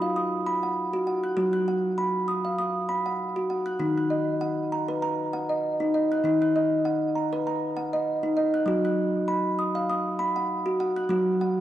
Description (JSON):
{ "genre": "world meditative, meditative tuned percussion", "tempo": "99 BPM", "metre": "4/4", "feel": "swing 55% on 16ths", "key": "unclear", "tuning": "A4 = 440 Hz", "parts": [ { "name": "kalimba", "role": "solo", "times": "0.0-11.6 s", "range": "Eb3 to F#6", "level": "-24 LUFS", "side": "equal", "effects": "diffuse ambient delay" } ], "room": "wet echo chamber reverb, RT60 2.5 s", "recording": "worn, warbling old tape, cassette tape, warbly pitch drift", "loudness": "-24 LUFS", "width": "side -12 dB against mid", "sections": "0.0-11.6 A section", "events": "none", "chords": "0.0 B/F#; 3.8 Ebm; 8.7 B/F#", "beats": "0.16 0.76 | 1.37 1.98 2.58 3.19 | 3.80 4.41 5.02 5.63 | 6.24 6.84 7.45 8.06 | 8.67 9.28 9.89 10.50 | 11.10" }